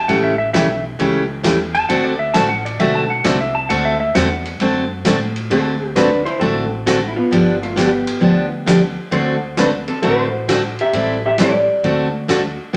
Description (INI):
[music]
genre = country, western swing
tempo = 133 BPM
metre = 4/4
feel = swing 68% on 8ths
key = D mixolydian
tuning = A4 = 441 Hz
[part]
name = clean lap steel guitar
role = second line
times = 0.0-4.4 s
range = D5 to A5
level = -21 LUFS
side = equal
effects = none
[part]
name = upright bass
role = bass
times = 0.0-12.8 s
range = G1 to A2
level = -29 LUFS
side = equal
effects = none
[part]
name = picked steel-string acoustic guitar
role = accompaniment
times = 0.1-12.8 s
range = C#3 to A4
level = -19 LUFS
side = equal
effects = none
[part]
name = vintage drum kit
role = drums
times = 0.1-12.8 s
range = hi-hat, kick drum, ride cymbal, snare drum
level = -28 LUFS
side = equal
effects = none
[part]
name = hollow-body jazz guitar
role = melody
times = 5.5-12.6 s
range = A3 to E5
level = -21 LUFS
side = equal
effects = none
[sound]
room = wet studio reverb, RT60 0.8 s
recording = none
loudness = -17 LUFS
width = mono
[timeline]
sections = 0.0-5.5 A section; 5.5-12.8 B section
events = electric slide guitar solo 0.0-5.5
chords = 0.1 A7; 1.9 D7; 7.3 G7; 9.1 D7; 10.9 Am7; 11.8 D7